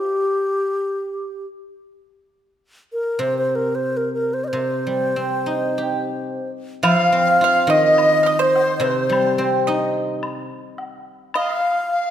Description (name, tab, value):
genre	chinese traditional, Chinese chamber ensemble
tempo	96-108 BPM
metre	4/4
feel	rubato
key	C yu mode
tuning	A4 = 440 Hz
part	breathy bright low xiao	melody	0.0-12.1 s	G4 to F5	-20 LUFS	equal	none
part	guzheng	accompaniment	3.2-10.8 s	C3 to G4	-22 LUFS	right 1 dB	none
part	pipa	second line	6.8-12.1 s	C5 to F5	-24 LUFS	right 5 dB	none
part	woodblock	percussion	6.8-11.5 s	none	-30 LUFS	left 3 dB	none
part	large dizi	second line	6.9-12.1 s	C5 to F5	-23 LUFS	left 5 dB	none
room	wet concert hall reverb, RT60 1.8 s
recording	none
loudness	-17 LUFS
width	side -10 dB against mid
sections	0.0-6.8 A section; 6.8-12.1 B section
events	none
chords	none